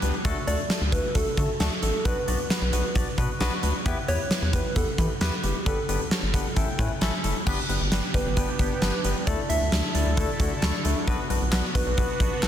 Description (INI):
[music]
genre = synth-pop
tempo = 133 BPM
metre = 4/4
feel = straight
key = unclear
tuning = A4 = 439 Hz
[part]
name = barky tine electric piano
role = accompaniment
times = 0.0-12.5 s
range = A3 to B5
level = -31 LUFS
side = left 4 dB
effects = overdrive, lush chorus
[part]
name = rubbery square bass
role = bass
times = 0.0-12.5 s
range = F#1 to E3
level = -27 LUFS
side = equal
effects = none
[part]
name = huge arena drum kit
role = drums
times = 0.0-12.5 s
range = crash cymbal, handclaps, hi-hat, kick drum, snare drum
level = -26 LUFS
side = equal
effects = none
[part]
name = soft struck synth lead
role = melody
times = 0.5-12.5 s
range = G4 to E5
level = -31 LUFS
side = right 1 dB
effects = chorus, tremolo, digital delay
[part]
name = sweeping resonant pad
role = sustained chords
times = 7.5-12.5 s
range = D3 to A4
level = -34 LUFS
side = equal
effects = chorus
[sound]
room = light reverb, studio ambience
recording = dense, heavily limited modern master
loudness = -23 LUFS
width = side -10 dB against mid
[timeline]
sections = 0.0-7.5 A section; 7.5-12.5 B section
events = tine electric piano fill 6.1-7.5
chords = 0.2 D; 2.1 Bm; 3.9 Em; 5.7 Gadd9; 6.6 A7; 7.5 G; 9.3 Dsus2; 11.1 Bm